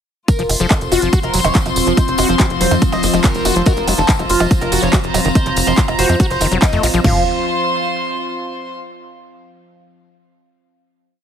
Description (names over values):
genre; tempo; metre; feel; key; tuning
psychedelic trance; 142 BPM; 4/4; straight; unclear; A4 = 440 Hz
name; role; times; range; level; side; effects
overdriven synth lead; melody; 0.3-7.2 s; F4 to F5; -22 LUFS; right 1 dB; chorus, phaser, sidechain pumping, ping-pong delay
evolving wavetable pad; sustained chords; 0.7-7.1 s; F3 to C4; -22 LUFS; left 1 dB; chorus, built-in reverb, sidechain pumping
techno drum kit; drums; 0.3-7.1 s; crash cymbal, kick drum, toms; -16 LUFS; equal; overdrive
techno drum kit; drums; 0.3-7.0 s; handclaps, hi-hat, percussion blips; -21 LUFS; right 2 dB; overdrive
tambourine; percussion; 0.3-7.0 s; none; -26 LUFS; right 3 dB; none
warm chamber string section; texture; 0.3-8.7 s; F4 to C6; -22 LUFS; left 1 dB; sidechain pumping
overdriven acid bass; riff; 0.4-7.2 s; Eb3 to Gb4; -22 LUFS; moving between left 7 dB and right 7 dB; auto-pan, sidechain pumping, ping-pong delay
tight sequencer bass; bass; 0.4-7.2 s; Eb1 to F2; -20 LUFS; equal; none
room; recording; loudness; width
light reverb; heavily compressed radio sound; -13 LUFS; side -8 dB against mid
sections
0.3-7.0 drop; 7.0-8.7 final chord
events
drop 0.3-7.0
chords
0.3 F5